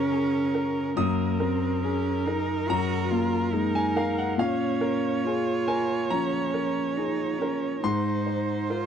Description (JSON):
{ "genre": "neoclassical piano and strings", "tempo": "70 BPM", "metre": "4/4", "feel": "rubato", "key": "Bb minor", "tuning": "A4 = 441 Hz", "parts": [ { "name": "rich cello", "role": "second line", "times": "0.0-8.9 s", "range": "Bb3 to Gb4", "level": "-28 LUFS", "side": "right 6 dB", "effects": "slapback echo" }, { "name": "clear concert grand piano", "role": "accompaniment", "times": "0.0-8.9 s", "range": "Gb2 to Eb6", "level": "-26 LUFS", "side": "left 4 dB", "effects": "none" }, { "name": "warm viola", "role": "accompaniment", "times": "0.0-8.9 s", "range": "Bb4 to Db5", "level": "-33 LUFS", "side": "right 3 dB", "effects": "none" } ], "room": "light reverb", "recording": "dry, close 1970s-style studio recording", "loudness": "-24 LUFS", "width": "side -8 dB against mid", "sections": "0.0-8.9 A section", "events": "none", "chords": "0.0 Gb; 1.0 Ebm/Gb; 4.4 Bbm7; 7.8 Ab" }